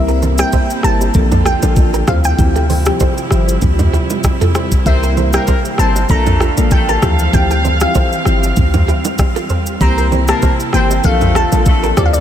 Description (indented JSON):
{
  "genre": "afrobeats",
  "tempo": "97 BPM",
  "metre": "4/4",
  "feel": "swing 55% on 16ths",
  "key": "D minor",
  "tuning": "A4 = 440 Hz",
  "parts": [
    { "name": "glassy wavetable pluck", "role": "melody", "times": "0.0-12.2 s", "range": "D5 to Bb5", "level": "-20 LUFS", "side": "left 1 dB", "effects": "chorus, ping-pong delay" },
    { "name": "soft electric-piano-like synth keys", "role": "accompaniment", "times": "0.0-12.2 s", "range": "E3 to Bb4", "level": "-21 LUFS", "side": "left 2 dB", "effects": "chorus" },
    { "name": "warm studio string section", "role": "sustained chords", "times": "0.0-12.2 s", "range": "C3 to F5", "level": "-22 LUFS", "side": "right 3 dB", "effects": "none" },
    { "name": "clean 808-style bass", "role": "bass", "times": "0.0-12.2 s", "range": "G1 to D2", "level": "-15 LUFS", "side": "equal", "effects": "none" },
    { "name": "direct-recorded clean electric guitar", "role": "riff", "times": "0.1-12.1 s", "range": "E4 to C5", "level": "-26 LUFS", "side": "right 7 dB", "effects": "lush chorus, ping-pong delay" },
    { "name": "afro-pop drum kit", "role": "drums", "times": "0.1-12.2 s", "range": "hi-hat, kick drum, rim click, shaker, toms", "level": "-16 LUFS", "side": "equal", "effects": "none" },
    { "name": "bongos and congas", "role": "percussion", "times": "0.2-11.8 s", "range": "none", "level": "-25 LUFS", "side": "right 7 dB", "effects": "none" },
    { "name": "warm horn section", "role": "second line", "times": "4.9-12.1 s", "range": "A3 to C5", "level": "-23 LUFS", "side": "left 3 dB", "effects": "ping-pong delay" }
  ],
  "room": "light reverb, digital ambience",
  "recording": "none",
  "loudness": "-11 LUFS",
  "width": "side -10 dB against mid",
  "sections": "0.0-12.2 A section",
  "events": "none",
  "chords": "0.0 C7; 1.1 Bbmaj7; 2.1 Dm11; 4.9 C7; 6.1 Bbmaj7; 7.0 Dm11; 9.8 C7; 11.0 Bbmaj7"
}